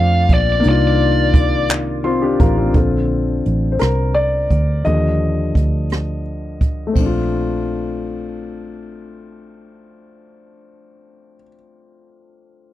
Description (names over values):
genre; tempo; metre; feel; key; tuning
slow six-eight R&B; 57 BPM (dotted quarters); 6/8; straight; Bb major; A4 = 440 Hz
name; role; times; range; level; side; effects
high-gain lead guitar; melody; 0.0-1.7 s; D5 to F5; -18 LUFS; left 2 dB; distortion, slapback echo
dark concert grand piano; accompaniment; 0.0-12.7 s; D3 to C6; -20 LUFS; left 3 dB; none
percussive tonewheel organ; sustained chords; 0.0-2.7 s; C3 to D5; -27 LUFS; right 5 dB; chorus vibrato, slow rotary speaker
vintage muted fingered electric bass; bass; 0.0-11.4 s; A1 to F2; -19 LUFS; right 1 dB; none
jazz brush drum kit; drums; 0.3-7.1 s; handclaps, hi-hat, kick drum, ride cymbal, rim click; -16 LUFS; right 1 dB; none
room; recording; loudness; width
little or no reverb; dry, close 1970s-style studio recording; -15 LUFS; side -14 dB against mid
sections
0.0-2.7 A section; 2.7-7.0 B section; 7.0-11.2 C section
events
grand piano fill 1.7-2.7; grand piano solo 2.7-7.0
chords
0.0 Dm7; 0.6 Cm11; 2.7 Bbmaj9; 4.8 Ebmaj9; 7.0 Bbmaj9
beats
| 0.64 1.69 | 2.74 3.80 | 4.85 5.90 | 6.95 8.01 | 9.06 10.11